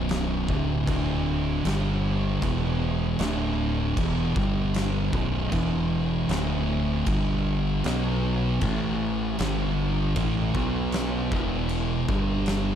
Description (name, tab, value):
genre	stoner and doom metal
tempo	78 BPM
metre	4/4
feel	straight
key	unclear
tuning	A4 = 440 Hz
part	thick fuzz guitar	riff	0.0-12.8 s	B1 to B3	-28 LUFS	left 8 dB	distortion
part	thick fuzz guitar	riff	0.0-12.8 s	B1 to B3	-28 LUFS	right 8 dB	distortion
part	growling fingered electric bass	bass	0.0-12.8 s	B0 to B1	-29 LUFS	equal	overdrive
part	oversized low-tuned drum kit	drums	0.1-12.7 s	crash cymbal, kick drum, snare drum	-31 LUFS	equal	none
room	little or no reverb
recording	dark, warm production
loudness	-23 LUFS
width	side -9 dB against mid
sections	0.0-12.8 A section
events	none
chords	0.0 Bm; 0.9 D5; 1.6 G5; 2.4 E5; 3.2 D5; 4.4 G5; 5.1 B5; 5.5 E5; 6.3 D5; 7.1 G5; 7.8 B5; 8.6 A5; 9.4 G5; 10.5 B5; 11.3 E5; 12.1 G5